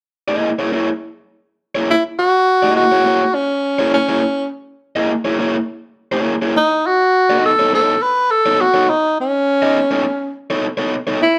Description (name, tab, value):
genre	funk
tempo	103 BPM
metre	4/4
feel	straight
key	unclear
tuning	A4 = 441 Hz
part	raw garage guitar	accompaniment	0.3-11.2 s	A#3 to D#5	-21 LUFS	equal	overdrive
part	breathy tenor saxophone	melody	1.9-11.4 s	C#4 to B4	-16 LUFS	equal	none
room	moderate large studio reverb, RT60 0.9 s, small room ambience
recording	none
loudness	-16 LUFS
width	mono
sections	0.0-1.9 A section; 1.9-11.4 B section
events	none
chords	0.0 A#m7b5; 6.6 B9